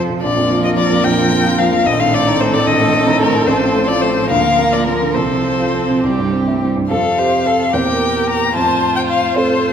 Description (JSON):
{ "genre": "quick classical-period movement for piano quintet", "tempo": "68-75 BPM (dotted quarters)", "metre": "6/8", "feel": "rubato", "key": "F major from 3.5 s", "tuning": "A4 = 440 Hz", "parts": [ { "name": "rich violin", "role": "melody", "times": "0.0-9.7 s", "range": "Bb4 to Bb5", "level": "-17 LUFS", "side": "left 5 dB", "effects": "none" }, { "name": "warm cello", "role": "second line", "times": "0.0-9.7 s", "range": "A2 to A3", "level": "-23 LUFS", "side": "right 8 dB", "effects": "none" }, { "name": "warm grand piano", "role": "accompaniment", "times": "0.0-9.7 s", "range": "A1 to C5", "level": "-17 LUFS", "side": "equal", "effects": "none" }, { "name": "warm violin", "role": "second line", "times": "0.2-9.7 s", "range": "F4 to C5", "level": "-23 LUFS", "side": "left 1 dB", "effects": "none" }, { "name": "rich viola", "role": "accompaniment", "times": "0.2-9.7 s", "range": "Bb3 to C5", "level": "-22 LUFS", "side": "right 6 dB", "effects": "none" } ], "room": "wet recital hall reverb, RT60 1.3 s", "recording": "none", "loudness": "-12 LUFS", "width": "side -8 dB against mid", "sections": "0.0-6.9 A section; 6.9-9.7 B section", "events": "none", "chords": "0.2 Bb5; 1.9 Adim/Bb; 3.5 F/A; 4.3 Bb/D; 5.2 F/C; 6.0 C; 6.9 F; 7.7 C7/E; 8.6 F" }